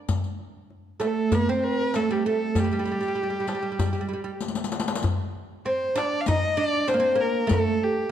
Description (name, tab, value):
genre	Arabic maqam ensemble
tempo	97 BPM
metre	4/4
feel	straight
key	unclear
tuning	A4 = 440 Hz
part	darbuka	percussion	0.1-7.9 s	none	-28 LUFS	left 2 dB	none
part	riq	percussion	0.1-7.6 s	none	-33 LUFS	left 5 dB	none
part	dark violin	melody	1.0-8.1 s	G4 to F5	-26 LUFS	left 1 dB	none
part	oud	second line	1.0-8.1 s	G3 to Eb4	-26 LUFS	right 4 dB	none
room	moderate recital hall reverb, RT60 1.6 s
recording	dark, warm production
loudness	-22 LUFS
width	side -10 dB against mid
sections	0.0-5.0 A section; 5.0-8.1 B section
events	drum fill 4.4-5.0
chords	none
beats	| 0.09 0.70 1.32 1.94 | 2.56 3.17 3.79 4.41 | 5.03 5.64 6.26 6.88 | 7.49 8.11